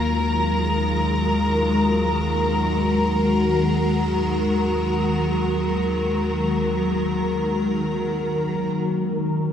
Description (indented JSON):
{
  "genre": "ambient",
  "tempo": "free time",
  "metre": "none",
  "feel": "none",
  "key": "Eb minor",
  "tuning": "A4 = 439 Hz",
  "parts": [
    { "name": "evolving wavetable pad", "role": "sustained chords", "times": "0.0-9.5 s", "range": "Eb3 to Bb4", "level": "-20 LUFS", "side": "left 1 dB", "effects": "ensemble chorus, built-in reverb" },
    { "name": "warm sub bass", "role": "bass", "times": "0.0-8.7 s", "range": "Eb2", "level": "-28 LUFS", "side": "equal", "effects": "none" },
    { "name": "rich studio violin section", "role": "texture", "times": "0.0-8.8 s", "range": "Bb4 to Bb5", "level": "-28 LUFS", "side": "left 1 dB", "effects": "none" }
  ],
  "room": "wet lush hall reverb, RT60 2.8 s",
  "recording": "dreamy mix soaked in reverb",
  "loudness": "-19 LUFS",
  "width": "side -8 dB against mid",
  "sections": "0.0-8.8 A section",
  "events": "none",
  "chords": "0.0 Ebmadd9; 8.8 Ebm"
}